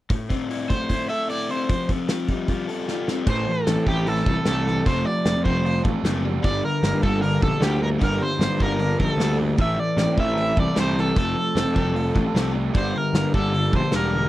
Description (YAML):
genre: indie rock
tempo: 152 BPM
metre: 4/4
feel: straight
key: unclear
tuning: A4 = 442 Hz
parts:
  - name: raw garage guitar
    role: riff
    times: 0.1-14.3 s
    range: G2 to A4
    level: -26 LUFS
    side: left 3 dB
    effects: overdrive
  - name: loose indie drum kit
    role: drums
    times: 0.1-14.0 s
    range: crash cymbal, hi-hat, kick drum, snare drum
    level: -24 LUFS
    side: equal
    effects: none
  - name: crunchy overdriven guitar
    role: melody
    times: 0.7-14.3 s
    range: G4 to E5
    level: -25 LUFS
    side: right 1 dB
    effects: harmonic tremolo
  - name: crunchy overdriven guitar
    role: riff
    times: 3.3-14.3 s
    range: G2 to A4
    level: -30 LUFS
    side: right 7 dB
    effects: wide subtle chorus, slapback echo
  - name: fuzz picked electric bass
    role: bass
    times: 3.3-14.3 s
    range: E1 to A2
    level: -25 LUFS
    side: equal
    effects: overdrive
room: little or no reverb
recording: none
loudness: -20 LUFS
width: side -15 dB against mid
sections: 0.1-3.3 A section; 3.3-14.3 B section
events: drum fill 2.9-3.3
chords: 0.1 Am; 1.7 Fadd9; 3.3 Am; 4.8 Fadd9; 6.4 Gmadd9; 9.6 Am; 11.2 Fadd9; 12.7 Gmadd9